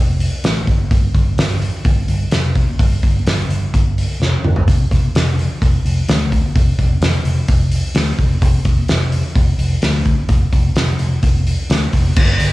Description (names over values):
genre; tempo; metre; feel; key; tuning
folk rock and heartland rock; 128 BPM; 4/4; straight; unclear; A4 = 437 Hz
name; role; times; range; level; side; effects
picked electric bass; bass; 0.0-12.5 s; F1 to D2; -17 LUFS; equal; none
loose indie drum kit; drums; 0.2-12.5 s; crash cymbal, hi-hat, kick drum, snare drum, toms; -15 LUFS; equal; cassette tape
room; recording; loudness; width
little or no reverb; home recording on cassette, studio reverb; -13 LUFS; side -18 dB against mid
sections
0.0-12.2 A section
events
drum fill 4.2-4.7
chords
none